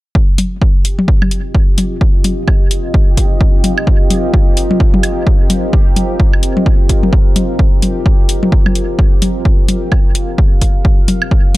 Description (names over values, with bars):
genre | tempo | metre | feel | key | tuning
minimal techno | 129 BPM | 4/4 | swing 59% on 16ths | C minor | A4 = 441 Hz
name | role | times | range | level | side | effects
electronic kick drum | drums | 0.1-11.4 s | none | -11 LUFS | equal | none
deep dark ambient pad | texture | 1.4-11.6 s | C4 to F5 | -21 LUFS | equal | chorus, built-in reverb, sidechain pumping
bubbling stepped-filter texture | texture | 0.9-11.6 s | G4 | -28 LUFS | right 5 dB | chorus, built-in reverb, sidechain pumping
electronic hi-hat | drums | 0.4-11.6 s | none | -19 LUFS | left 2 dB | none
electronic toms and woodblock | percussion | 0.4-11.6 s | none | -16 LUFS | left 1 dB | none
room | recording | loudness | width
little or no reverb | dark, warm production | -10 LUFS | side -18 dB against mid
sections
0.1-11.6 A section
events
none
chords
0.1 Cm